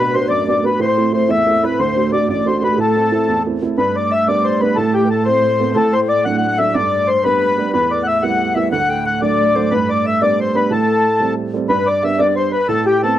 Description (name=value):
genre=celtic folk, Celtic jig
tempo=121 BPM (dotted quarters)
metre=6/8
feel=straight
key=unclear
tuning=A4 = 440 Hz
part: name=mellow accordion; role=melody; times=0.0-13.2 s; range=G4 to F#5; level=-17 LUFS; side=left 1 dB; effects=none
part: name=bright wooden flute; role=second line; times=0.0-13.2 s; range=G4 to G5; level=-20 LUFS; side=left 7 dB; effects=none
part: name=warm upright piano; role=accompaniment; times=0.0-13.2 s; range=A1 to F#4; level=-20 LUFS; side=right 5 dB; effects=none
part: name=rich studio string section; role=drone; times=0.0-11.7 s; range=A2 to A3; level=-22 LUFS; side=right 4 dB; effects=none
part: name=tine electric piano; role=second line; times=11.7-13.2 s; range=G4 to E5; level=-22 LUFS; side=right 3 dB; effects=none
room=small room ambience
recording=dry, close 1970s-style studio recording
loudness=-14 LUFS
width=side -12 dB against mid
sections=0.0-3.8 A section; 3.8-11.7 B section; 11.7-13.2 B section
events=none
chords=0.0 Bm; 0.8 Am; 1.8 D; 2.8 Am; 3.8 G; 4.8 Amadd9; 5.8 D/A; 6.7 G; 7.7 Em; 8.7 D; 9.7 G; 10.7 Am7; 11.7 G